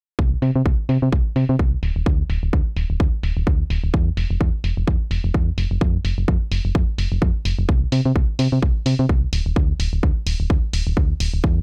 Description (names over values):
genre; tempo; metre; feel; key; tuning
piano house; 128 BPM; 4/4; swing 57% on 16ths; D minor; A4 = 440 Hz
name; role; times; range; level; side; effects
solid FM bass; bass; 0.2-11.6 s; D1 to C3; -22 LUFS; equal; tube saturation, sidechain pumping
electronic kick drum; drums; 0.2-11.5 s; none; -21 LUFS; equal; none
electronic hi-hat; drums; 0.4-11.3 s; none; -33 LUFS; equal; low-pass filter on hats, low-pass filter on room
room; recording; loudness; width
little or no reverb; none; -20 LUFS; mono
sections
0.2-11.6 A section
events
none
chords
none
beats
| 0.19 0.66 1.12 1.59 | 2.06 2.53 3.00 3.47 | 3.94 4.41 4.88 5.34 | 5.81 6.28 6.75 7.22 | 7.69 8.16 8.62 9.09 | 9.56 10.03 10.50 10.97 | 11.44